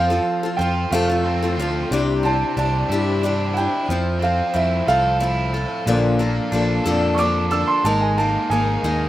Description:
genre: rock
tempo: 61 BPM (dotted quarters)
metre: 6/8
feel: straight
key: C mixolydian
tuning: A4 = 440 Hz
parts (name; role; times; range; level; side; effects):
- warm concert grand piano; melody; 0.0-9.1 s; E5 to E6; -22 LUFS; right 2 dB; analog delay
- picked steel-string acoustic guitar; accompaniment; 0.0-9.1 s; Bb2 to Bb4; -23 LUFS; left 4 dB; none
- mellow tonewheel organ; sustained chords; 0.0-9.1 s; F3 to C6; -34 LUFS; right 1 dB; none
- crunchy overdriven guitar; riff; 0.0-9.1 s; Bb2 to A4; -26 LUFS; right 1 dB; none
- picked electric bass; bass; 0.0-9.1 s; Ab1 to G2; -23 LUFS; equal; none
room: studio ambience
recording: rough home demo mix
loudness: -17 LUFS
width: side -14 dB against mid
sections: 0.0-1.9 A section; 1.9-9.1 B section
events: grand piano solo 1.9-9.1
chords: 0.0 F; 1.9 Cadd9; 3.9 Fmaj7; 5.9 Bbmaj7; 7.8 Absus2

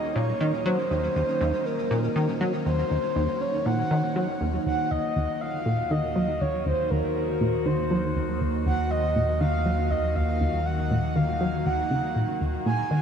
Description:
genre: ambient, sequencer-driven space music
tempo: 120 BPM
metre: 4/4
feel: straight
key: Eb dorian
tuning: A4 = 439 Hz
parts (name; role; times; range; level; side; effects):
- breathy flute-like synth lead; melody; 0.0-13.0 s; Bb4 to Ab5; -28 LUFS; equal; lush chorus, shimmer reverb, analog delay
- evolving wavetable pad; sustained chords; 0.0-13.0 s; Eb3 to Gb4; -31 LUFS; right 1 dB; phaser, built-in reverb, shimmer reverb
- pulsing gated texture; texture; 0.0-13.0 s; Gb3 to C5; -38 LUFS; left 1 dB; chorus, built-in reverb, shimmer reverb
- plucky analog bass; riff; 0.2-13.0 s; Eb2 to Gb3; -27 LUFS; equal; lush chorus, analog delay
- analog drone; bass; 5.9-13.0 s; Eb2; -30 LUFS; equal; chorus
room: wet huge ambient reverb, RT60 8.6 s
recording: none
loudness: -23 LUFS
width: side -7 dB against mid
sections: 0.0-4.7 A section; 4.7-13.0 B section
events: filter sweep on analog synth bass 4.7-13.0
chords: 0.0 Ebm

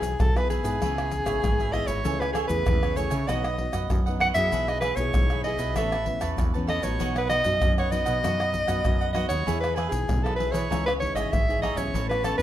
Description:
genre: samba and choro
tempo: 97 BPM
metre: 4/4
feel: straight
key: E major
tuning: A4 = 440 Hz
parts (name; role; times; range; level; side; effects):
- clear soprano saxophone; melody; 0.0-12.4 s; G#4 to F#5; -27 LUFS; equal; none
- cavaquinho; accompaniment; 0.0-12.4 s; D#4 to A5; -33 LUFS; right 6 dB; none
- nylon-string guitar; accompaniment; 0.0-12.4 s; F#2 to G#4; -33 LUFS; left 3 dB; none
- woody fretless electric bass; bass; 0.0-12.4 s; G#1 to E3; -30 LUFS; equal; none
- tube shaker, surdo, pandeiro and tamborim; percussion; 0.0-12.4 s; none; -28 LUFS; left 1 dB; none
room: light reverb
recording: minimal, uncompressed stereo recording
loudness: -23 LUFS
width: side -12 dB against mid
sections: 0.0-12.4 A section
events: none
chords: 0.0 E; 0.8 C#m7; 2.1 Amaj7/C#; 3.3 B; 4.5 E/B; 5.8 Aadd9; 7.0 B; 9.5 E; 10.7 C#madd9

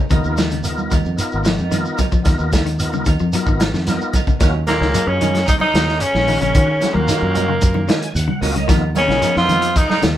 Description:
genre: afrobeat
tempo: 112 BPM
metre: 4/4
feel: straight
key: Eb minor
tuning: A4 = 440 Hz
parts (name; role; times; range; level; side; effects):
- clean electric guitar; arpeggios; 0.0-10.2 s; Db3 to Gb3; -24 LUFS; left 6 dB; spring reverb
- tonewheel organ; accompaniment; 0.1-9.7 s; Bb3 to Ab5; -25 LUFS; left 1 dB; slow rotary speaker, overdrive, chorus vibrato
- semi-hollow electric guitar; stabs; 0.1-10.2 s; F3 to Bb4; -27 LUFS; right 6 dB; tremolo
- fingered electric bass; bass; 0.1-10.2 s; Ab1 to Eb3; -21 LUFS; equal; none
- crunchy breakbeat drum kit; drums; 0.1-10.2 s; hi-hat, kick drum, snare drum; -19 LUFS; equal; none
- congas; percussion; 0.1-10.0 s; none; -26 LUFS; right 4 dB; none
- shekere; percussion; 0.1-10.2 s; none; -27 LUFS; right 2 dB; none
- breathy tenor saxophone; melody; 4.7-10.0 s; Bb3 to F4; -18 LUFS; equal; none
- growling tenor saxophone; second line; 4.7-10.0 s; Bb3 to F4; -26 LUFS; right 4 dB; none
- raspy baritone saxophone; second line; 4.7-10.0 s; Bb2 to F3; -29 LUFS; left 3 dB; none
room: light reverb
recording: band playing live in one room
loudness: -14 LUFS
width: side -12 dB against mid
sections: 0.0-4.4 A section; 4.4-10.2 B section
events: tonewheel organ fill 7.6-8.7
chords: 0.1 Db13; 4.4 Ebm7; 8.7 Db13

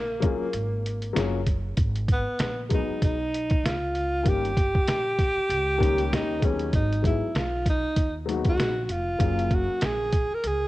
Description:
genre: hip hop, jazz-hop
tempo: 97 BPM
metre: 4/4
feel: swing 57% on 16ths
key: G# dorian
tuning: A4 = 440 Hz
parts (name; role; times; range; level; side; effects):
- mellow tenor saxophone; melody; 0.0-10.7 s; A#3 to A#4; -27 LUFS; right 1 dB; none
- upright bass; bass; 0.0-10.7 s; E#1 to D#2; -31 LUFS; equal; tube saturation
- dark upright piano; accompaniment; 0.2-10.1 s; D#3 to E#5; -30 LUFS; left 6 dB; cassette tape
- lo-fi sampler-style drum kit; drums; 0.2-10.6 s; hi-hat, kick drum, snare drum; -25 LUFS; equal; cassette tape
room: light reverb, studio reverb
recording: home recording on cassette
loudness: -23 LUFS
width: side -17 dB against mid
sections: 0.0-10.7 A section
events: none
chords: 0.0 F#maj9; 1.8 G#m7; 4.2 D#7/G; 6.7 G#m7; 9.2 F#maj9

